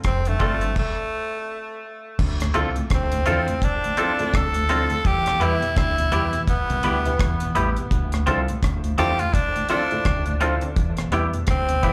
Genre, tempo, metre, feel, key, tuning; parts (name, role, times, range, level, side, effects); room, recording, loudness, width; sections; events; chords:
lovers rock reggae; 84 BPM; 4/4; swing 59% on 16ths; D dorian; A4 = 440 Hz
deep reggae drum kit; drums; 0.0-11.9 s; crash cymbal, hi-hat, kick drum, rim click; -26 LUFS; equal
raspy tenor saxophone; melody; 0.1-11.9 s; A3 to A4; -27 LUFS; equal; tape echo
deep dub fingered electric bass; bass; 0.1-11.9 s; F1 to E2; -27 LUFS; equal
mellow tonewheel organ; accompaniment; 0.3-11.9 s; D2 to F4; -34 LUFS; equal; chorus vibrato, slow rotary speaker
clear grand piano; accompaniment; 0.4-11.9 s; B3 to E5; -34 LUFS; equal; dub echo, slapback echo
twangy electric guitar; stabs; 0.4-11.9 s; B3 to A4; -27 LUFS; equal; subtle chorus, slapback echo
light reverb; live gig heard through the venue's PA, club reverb; -22 LUFS; mono
0.0-2.2 A section; 2.2-11.9 B section
stop 0.8-2.2
0.0 G9sus4; 0.8 N.C.; 2.2 Dm7; 5.0 Em; 7.9 Dm7; 10.8 Em